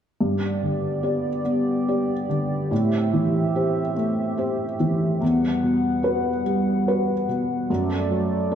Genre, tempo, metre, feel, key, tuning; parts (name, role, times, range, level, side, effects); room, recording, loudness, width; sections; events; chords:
neoclassical piano and strings; 72 BPM; 3/4; rubato; G major; A4 = 440 Hz
felt-muted upright piano; accompaniment; 0.2-8.6 s; E2 to D5; -22 LUFS; equal
hollow soft pad; sustained chords; 0.2-8.6 s; G3 to F#5; -27 LUFS; equal; chorus
wet recital hall reverb, RT60 1.6 s; dark, warm production; -20 LUFS; side -8 dB against mid
0.2-8.6 A section
0.2 G; 2.7 Am7; 5.2 Emadd9; 7.7 D/F#